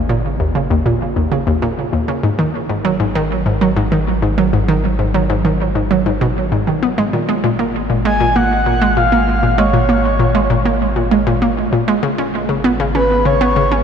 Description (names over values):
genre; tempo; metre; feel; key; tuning
ambient, sequencer-driven space music; 98 BPM; 4/4; straight; unclear; A4 = 440 Hz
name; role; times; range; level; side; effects
round analog bass; bass; 0.0-13.8 s; G#1; -21 LUFS; equal; none
hollow square pluck; riff; 0.1-13.8 s; D#2 to C#4; -15 LUFS; right 1 dB; chorus, analog delay
breathy flute-like synth lead; melody; 8.1-13.8 s; B4 to G#5; -17 LUFS; equal; lush chorus, analog delay
room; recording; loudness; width
wet huge ambient reverb, RT60 7.6 s; dreamy mix soaked in reverb; -13 LUFS; side -7 dB against mid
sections
0.0-13.8 A section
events
none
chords
0.0 D#5/G#; 2.2 N.C.; 7.1 A#m/G#; 12.0 C#5/G#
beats
0.40 1.01 1.62 | 2.23 2.85 3.46 4.07 | 4.68 5.30 5.91 6.52 | 7.13 7.75 8.36 8.97 | 9.58 10.19 10.81 11.42 | 12.03 12.64 13.26